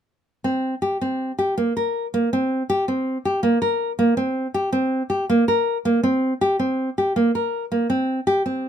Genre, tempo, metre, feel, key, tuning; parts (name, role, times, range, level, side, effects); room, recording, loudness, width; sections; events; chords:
contemporary instrumental, contemporary; 161 BPM; 5/4; straight; A4 = 440 Hz
nylon-string guitar; solo; 0.4-8.7 s; Bb3 to Bb4; -19 LUFS; equal
light reverb; close, detailed microphones; -19 LUFS; side -9 dB against mid
0.4-8.7 A section